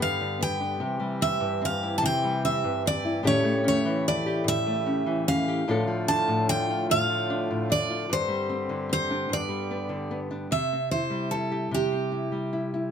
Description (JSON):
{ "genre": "acoustic folk duo or small band", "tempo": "50 BPM (dotted quarters)", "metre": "6/8", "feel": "straight", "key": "C major", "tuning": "A4 = 443 Hz", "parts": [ { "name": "picked steel-string acoustic guitar", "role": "melody", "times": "0.0-12.9 s", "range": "G4 to A5", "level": "-27 LUFS", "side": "right 1 dB", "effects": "none" }, { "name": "nylon-string guitar", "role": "accompaniment", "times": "0.0-12.9 s", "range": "G2 to B4", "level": "-28 LUFS", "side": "left 1 dB", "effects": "none" }, { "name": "hand-pumped harmonium", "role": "sustained chords", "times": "0.0-10.5 s", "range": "A2 to G4", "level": "-33 LUFS", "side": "equal", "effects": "none" } ], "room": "light reverb", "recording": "close, detailed microphones", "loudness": "-24 LUFS", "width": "side -8 dB against mid", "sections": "0.0-10.5 A section; 10.5-12.9 B section", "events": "steel-string acoustic guitar solo 10.5-12.9", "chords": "0.0 G; 0.8 C; 3.2 A7; 5.7 Dm/A; 8.1 Gsus4; 9.3 G; 10.5 C" }